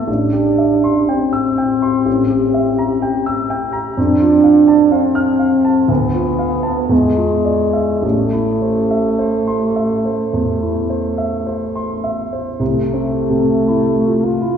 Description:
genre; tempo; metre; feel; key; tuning
classical, romantic duo for French horn and grand piano; 51-64 BPM; 4/4; rubato; A minor; A4 = 445 Hz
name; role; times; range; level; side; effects
warm French horn; melody; 0.0-14.6 s; G#3 to F4; -15 LUFS; right 1 dB; none
warm grand piano; accompaniment; 0.0-14.6 s; A1 to F6; -18 LUFS; equal; none
room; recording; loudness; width
wet recital hall reverb, RT60 1.6 s; recorded in a church or concert hall, nothing above 7.8 kHz; -13 LUFS; side -7 dB against mid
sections
0.0-12.6 A section; 12.6-14.6 B section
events
none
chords
0.1 C/A; 2.1 C7/A; 4.0 F; 5.9 Bm7b5/D; 6.9 E7b9; 8.0 Am; 12.6 Am/C

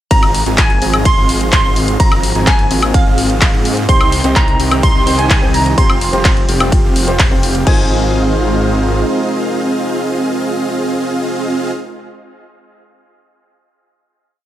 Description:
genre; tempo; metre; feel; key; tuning
EDM, festival progressive house; 127 BPM; 4/4; straight; Ab major; A4 = 444 Hz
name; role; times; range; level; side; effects
glassy wavetable pluck; melody; 0.1-11.7 s; F5 to C6; -18 LUFS; right 2 dB; chorus, vintage 12-bit sampler grit, dub echo
lush unison pad; sustained chords; 0.1-11.7 s; Eb3 to C5; -24 LUFS; right 1 dB; chorus, sidechain pumping
dense compressed supersaw; riff; 0.1-11.7 s; C4 to Bb5; -18 LUFS; right 1 dB; sidechain pumping, dub echo
wide detuned saw bass; bass; 0.1-9.0 s; F1 to Ab2; -18 LUFS; equal; chorus, sidechain pumping
big-room dance drum kit; drums; 0.1-7.8 s; crash cymbal, handclaps, hi-hat, ride cymbal, woodblock; -18 LUFS; left 1 dB; none
electronic kick drum; drums; 0.1-7.8 s; none; -13 LUFS; equal; none
warm concert grand piano; accompaniment; 3.9-11.7 s; C4 to C5; -23 LUFS; left 1 dB; sidechain pumping, dub echo
room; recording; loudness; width
little or no reverb; none; -11 LUFS; side -12 dB against mid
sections
0.1-7.7 drop; 7.7-11.4 final chord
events
drop 0.1-7.7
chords
0.1 Ab6; 3.9 Cm; 5.8 Fsus2; 7.7 Ab6

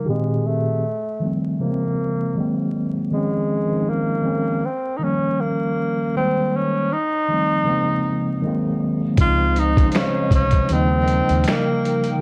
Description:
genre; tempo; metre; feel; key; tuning
lo-fi hip hop; 79 BPM; 4/4; swing 56% on 16ths; Ab major; A4 = 436 Hz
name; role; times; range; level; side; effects
breathy tenor saxophone; melody; 0.0-12.2 s; Ab3 to F4; -25 LUFS; equal; low-pass filter
mellow tine electric piano; accompaniment; 0.0-12.2 s; Bb2 to C5; -24 LUFS; equal; low-pass filter
hollow soft pad; sustained chords; 9.4-12.2 s; Eb4 to G5; -33 LUFS; equal; ensemble chorus, low-pass filter
vintage muted fingered electric bass; bass; 9.2-11.4 s; C2 to Eb2; -23 LUFS; equal; none
boom bap sampler-style drum kit; drums; 9.2-12.2 s; finger snaps, hi-hat, kick drum, snare drum; -22 LUFS; equal; none
room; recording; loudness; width
moderate studio reverb, RT60 0.6 s; worn, warbling old tape, cassette tape, vinyl crackle, warbly pitch drift; -20 LUFS; mono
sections
0.0-9.2 A section; 9.2-12.2 B section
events
filter sweep 0.0-9.2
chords
0.1 Abmaj7; 0.8 F7; 1.6 Bbm7; 2.3 Ab7; 3.1 Dbmaj9; 4.6 Eb7; 6.1 Abmaj7; 6.9 F7; 7.7 Bbm7; 8.4 Ab7; 9.2 Dbmaj9; 10.7 Eb7

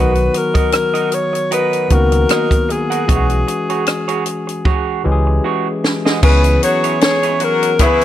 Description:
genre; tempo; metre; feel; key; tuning
lush 1970s-style soul; 76 BPM; 4/4; swing 54% on 16ths; C# dorian; A4 = 441 Hz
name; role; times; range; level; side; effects
clear alto saxophone; melody; 0.0-8.0 s; G#4 to C#5; -17 LUFS; left 2 dB; none
barky tine electric piano; accompaniment; 0.0-8.0 s; D#3 to G#4; -20 LUFS; left 2 dB; overdrive
electric guitar through a small old amp; riff; 0.0-8.0 s; E4 to F#5; -23 LUFS; right 10 dB; none
overdriven fingered electric bass; bass; 0.0-6.5 s; B1 to C#2; -15 LUFS; equal; none
compact cocktail drum kit; drums; 0.2-8.0 s; crash cymbal, hi-hat, kick drum, rim click, snare drum; -16 LUFS; equal; none
clear horn section; stabs; 6.6-8.0 s; C#3 to G#4; -20 LUFS; left 3 dB; analog delay
room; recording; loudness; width
light reverb, studio reverb; none; -13 LUFS; side -12 dB against mid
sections
0.0-6.2 A section; 6.2-8.0 B section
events
drum fill 4.7-6.2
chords
0.0 Bmaj7; 3.1 E69/B; 6.2 C#m7

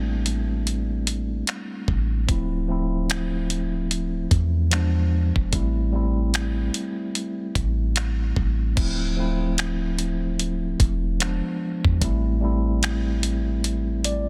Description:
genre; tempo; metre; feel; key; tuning
contemporary R&B; 74 BPM; 4/4; swing 58% on 16ths; D minor; A4 = 440 Hz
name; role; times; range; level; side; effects
mellow tine electric piano; accompaniment; 0.0-14.3 s; F3 to D5; -30 LUFS; equal; none
soft 808-style bass; bass; 0.0-14.3 s; D1 to E2; -26 LUFS; equal; none
dusty soul sampler-style drum kit; drums; 0.3-14.3 s; crash cymbal, finger snaps, hi-hat, kick drum; -27 LUFS; equal; soft clipping on snare
room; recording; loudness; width
little or no reverb; dense, heavily limited modern master; -24 LUFS; mono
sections
0.0-8.8 A section; 8.8-14.3 B section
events
tine electric piano fill 13.6-14.3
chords
0.0 Am7; 2.3 Dm9; 4.7 E7b9; 5.5 Am7; 8.8 Dm9; 11.2 E7b9; 12.0 Am7

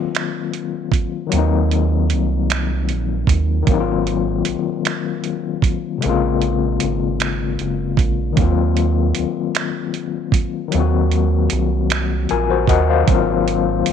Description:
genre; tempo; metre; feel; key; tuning
slow six-eight R&B; 51 BPM (dotted quarters); 6/8; straight; Eb dorian; A4 = 440 Hz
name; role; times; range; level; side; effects
overdriven tine electric piano; accompaniment; 0.0-13.9 s; C3 to Ab5; -20 LUFS; left 10 dB; medium tremolo
dusty soul sampler-style drum kit; drums; 0.1-13.9 s; finger snaps, hi-hat, kick drum; -20 LUFS; right 5 dB; none
rubbery square bass; bass; 1.3-13.9 s; Gb1 to Eb2; -20 LUFS; right 2 dB; none
room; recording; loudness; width
light reverb, digital ambience; 1960s-style stereo; -16 LUFS; side -8 dB against mid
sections
0.0-13.9 A section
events
tine electric piano fill 11.9-13.1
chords
0.0 Ebm69; 3.7 Ab13; 6.0 Bbm9; 8.4 Ebm69; 13.1 Ab13

